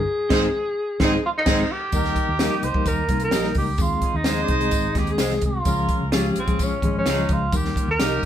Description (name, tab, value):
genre	uptempo 1960s-style soul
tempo	129 BPM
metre	4/4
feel	straight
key	Ab major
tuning	A4 = 439 Hz
part	breathy tenor saxophone	melody	0.0-8.2 s	C4 to C5	-25 LUFS	equal	none
part	mellow reed electric piano	accompaniment	0.0-8.3 s	Eb3 to C5	-27 LUFS	left 3 dB	fast tremolo
part	fingered electric bass	bass	0.0-8.3 s	Ab1 to Eb2	-28 LUFS	equal	none
part	warm horn section	second line	0.3-8.3 s	F3 to C5	-28 LUFS	right 1 dB	none
part	electric guitar through a small old amp	stabs	0.3-8.1 s	Eb4 to Eb5	-28 LUFS	right 4 dB	none
part	compact cocktail drum kit	drums	0.3-8.3 s	crash cymbal, hi-hat, kick drum, snare drum	-24 LUFS	equal	none
part	tambourine	percussion	1.9-8.1 s	none	-37 LUFS	left 4 dB	none
room	moderate studio reverb, RT60 0.8 s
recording	band playing live in one room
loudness	-19 LUFS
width	side -10 dB against mid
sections	0.0-1.9 A section; 1.9-8.3 B section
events	band accent 0.1-1.9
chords	0.1 Ab; 1.9 Eb; 3.8 Ab; 5.7 Db; 7.5 Eb